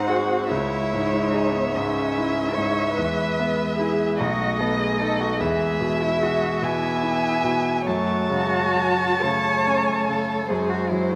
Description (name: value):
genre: classical, slow romantic movement for piano quintet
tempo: 49 BPM (dotted quarters)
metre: 6/8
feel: rubato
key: unclear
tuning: A4 = 439 Hz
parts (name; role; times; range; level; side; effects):
- muted violin; melody; 0.0-11.2 s; B#4 to A5; -30 LUFS; equal; none
- muted cello; second line; 0.0-11.2 s; B3 to C#5; -28 LUFS; equal; none
- muted violin; second line; 0.0-11.2 s; B#4 to F#5; -31 LUFS; equal; none
- bright concert grand piano; accompaniment; 0.0-11.2 s; B1 to C#5; -28 LUFS; equal; none
- muted viola; accompaniment; 0.0-11.2 s; F#3 to B#3; -32 LUFS; equal; none
room: wet scoring stage reverb, RT60 2.0 s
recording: faint mains hum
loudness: -23 LUFS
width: mono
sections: 0.0-11.2 A section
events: none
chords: 0.5 C#m; 3.0 E; 4.2 B7; 5.4 E; 7.9 F#m; 10.5 G#7/F#